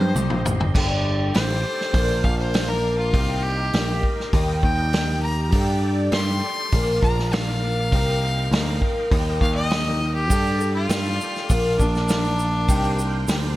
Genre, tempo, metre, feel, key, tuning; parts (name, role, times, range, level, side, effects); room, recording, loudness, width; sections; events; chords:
folk rock and heartland rock; 100 BPM; 4/4; straight; C dorian; A4 = 440 Hz
clear fiddle; melody; 0.0-13.5 s; D4 to C6; -27 LUFS; left 1 dB
picked twelve-string acoustic guitar; accompaniment; 0.0-13.6 s; G2 to Bb4; -27 LUFS; left 1 dB; analog chorus
bright tonewheel organ; sustained chords; 0.0-13.6 s; G4 to Eb6; -36 LUFS; right 1 dB; slow rotary speaker, chorus vibrato
picked electric bass; bass; 0.0-13.6 s; G1 to G2; -23 LUFS; equal
vintage drum kit; drums; 0.0-13.4 s; crash cymbal, hi-hat, kick drum, snare drum, toms; -24 LUFS; equal
tube shaker; percussion; 0.2-0.6, 10.3-13.4 s; -35 LUFS; right 4 dB
moderate lush hall reverb, RT60 1.8 s, small room ambience; bright 1980s-style digital production; -19 LUFS; side -16 dB against mid
0.7-13.6 A section
drum fill 0.0-0.7; fiddle solo 0.7-13.6
0.0 Cm; 0.7 Gsus2; 1.9 Bb; 3.1 Cm7; 4.3 Eb; 5.5 Gsus2; 6.7 Bb; 7.9 Cm7; 9.1 Eb; 10.3 Gsus2; 11.5 Bb; 12.7 Cm7